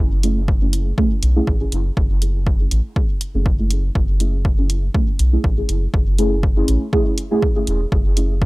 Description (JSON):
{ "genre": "dub techno", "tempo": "121 BPM", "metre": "4/4", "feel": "swing 55% on 16ths", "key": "F# minor", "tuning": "A4 = 439 Hz", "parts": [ { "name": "soft dub sub bass", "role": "bass", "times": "0.0-8.5 s", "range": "E1 to B1", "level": "-19 LUFS", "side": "equal", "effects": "tube saturation, sidechain pumping" }, { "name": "deep mellow chord stab", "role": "stabs", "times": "0.2-8.3 s", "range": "A3 to G#4", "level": "-23 LUFS", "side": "right 1 dB", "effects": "chorus, phaser, sidechain pumping, dub echo" }, { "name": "electronic hi-hat", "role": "drums", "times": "0.2-8.3 s", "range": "none", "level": "-26 LUFS", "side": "right 1 dB", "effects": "none" }, { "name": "electronic kick drum", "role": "drums", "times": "0.5-8.5 s", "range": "none", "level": "-19 LUFS", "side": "equal", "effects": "none" } ], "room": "digital ambience", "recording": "dry, gritty hardware recording", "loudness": "-16 LUFS", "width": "side -21 dB against mid", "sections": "0.0-7.9 A section", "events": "filter sweep on synth stab 0.0-7.9", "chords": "0.0 F#m7", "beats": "0.48 0.98 1.47 | 1.97 2.47 2.96 3.46 | 3.95 4.45 4.95 5.44 | 5.94 6.43 6.93 7.42 | 7.92 8.42" }